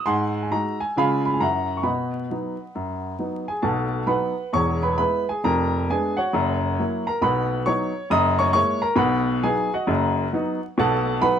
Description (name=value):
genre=jazz, stride piano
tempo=135 BPM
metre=4/4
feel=swing 64% on 8ths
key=B major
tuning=A4 = 442 Hz
part: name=warm upright piano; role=solo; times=0.0-11.4 s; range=E1 to D#6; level=-20 LUFS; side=equal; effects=none
room=moderate studio reverb, RT60 0.6 s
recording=vinyl crackle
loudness=-20 LUFS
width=side -8 dB against mid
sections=0.0-3.6 A section; 3.6-11.4 B section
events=none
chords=0.1 G#5; 1.0 C#7; 1.4 F#7; 1.9 B; 3.6 B7; 4.5 E; 5.4 Fdim7; 6.3 F#7; 7.2 B; 8.1 F#9; 9.0 B; 10.8 B7